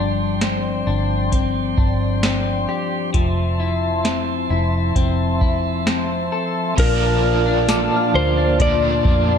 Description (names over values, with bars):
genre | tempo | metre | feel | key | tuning
dream pop | 66 BPM | 4/4 | straight | unclear | A4 = 440 Hz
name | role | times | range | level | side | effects
mellow tonewheel organ | sustained chords | 0.0-9.4 s | F3 to C6 | -23 LUFS | equal | slow rotary speaker
clean electric guitar | arpeggios | 0.0-9.4 s | G2 to A4 | -23 LUFS | left 4 dB | lush chorus, tape echo
vintage muted fingered electric bass | bass | 0.0-9.4 s | F1 to F2 | -22 LUFS | equal | none
soft vintage rhythm box | drums | 0.4-9.3 s | crash cymbal, hi-hat, kick drum, snare drum, tambourine | -21 LUFS | equal | overdrive
clean electric guitar | melody | 6.8-9.4 s | Bb4 to D5 | -21 LUFS | left 2 dB | tape echo
crunchy overdriven guitar | accompaniment | 6.8-9.4 s | Bb2 to D4 | -24 LUFS | right 6 dB | tremolo, ensemble chorus
soft synth bell | texture | 7.7-9.4 s | D6 to F6 | -32 LUFS | right 1 dB | chorus, tape echo
room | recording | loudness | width
light reverb | dark, warm production | -16 LUFS | side -7 dB against mid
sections
0.0-6.8 A section; 6.8-9.4 B section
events
none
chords
0.0 G7sus4; 3.1 Fmaj7; 6.8 Bbmaj7